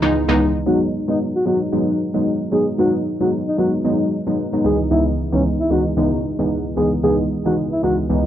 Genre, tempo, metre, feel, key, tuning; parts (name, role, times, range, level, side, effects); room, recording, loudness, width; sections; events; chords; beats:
afrobeats; 113 BPM; 4/4; swing 58% on 16ths; A4 = 436 Hz
glassy wavetable pluck; accompaniment; 0.0-8.3 s; C#2 to D#4; -18 LUFS; equal; chorus
breathy alto saxophone; melody; 0.7-8.0 s; C#4 to G#4; -22 LUFS; equal; tape echo
studio ambience; dry, gritty hardware recording, transformer saturation, low-pass filter; -16 LUFS; side -11 dB against mid
0.7-8.3 A section
filter sweep 0.7-8.3
0.0 C#m7; 0.7 G#m7; 4.6 C#m7
0.13 | 0.66 1.20 1.73 2.26 | 2.79 3.32 3.85 4.38 | 4.91 5.44 5.97 6.50 | 7.04 7.57 8.10